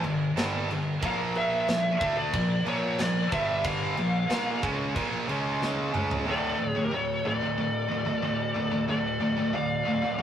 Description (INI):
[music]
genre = heavy metal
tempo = 92 BPM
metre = 4/4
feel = straight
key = D harmonic minor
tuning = A4 = 445 Hz
[part]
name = high-gain distorted guitar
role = riff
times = 0.0-10.2 s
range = D2 to D4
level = -30 LUFS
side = right 3 dB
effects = distortion
[part]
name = scooped high-gain guitar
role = riff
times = 0.0-10.2 s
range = D2 to D4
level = -33 LUFS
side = left 3 dB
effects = distortion
[part]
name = fuzz picked electric bass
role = bass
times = 0.0-6.2 s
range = G1 to D2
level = -36 LUFS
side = equal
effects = overdrive
[part]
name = tight metal drum kit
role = drums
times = 0.0-6.3 s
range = crash cymbal, kick drum, snare drum, toms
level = -33 LUFS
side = equal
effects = none
[part]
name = high-gain lead guitar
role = melody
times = 1.1-10.2 s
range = Bb4 to F5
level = -29 LUFS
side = left 1 dB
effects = distortion
[part]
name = crunchy overdriven guitar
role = riff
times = 6.2-10.2 s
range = D2 to D3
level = -35 LUFS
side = left 3 dB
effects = none
[part]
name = high-gain lead guitar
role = second line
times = 6.3-10.1 s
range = G4 to D5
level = -35 LUFS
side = right 1 dB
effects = distortion
[sound]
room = wet booth ambience, RT60 0.2 s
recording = rough rehearsal-room recording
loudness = -25 LUFS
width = side -9 dB against mid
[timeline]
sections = 0.0-6.3 A section; 6.3-10.2 B section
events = drum fill 5.6-6.3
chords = 0.0 G5; 1.0 Bb5; 3.3 G5; 4.0 Bb5; 5.3 C#5; 6.3 D5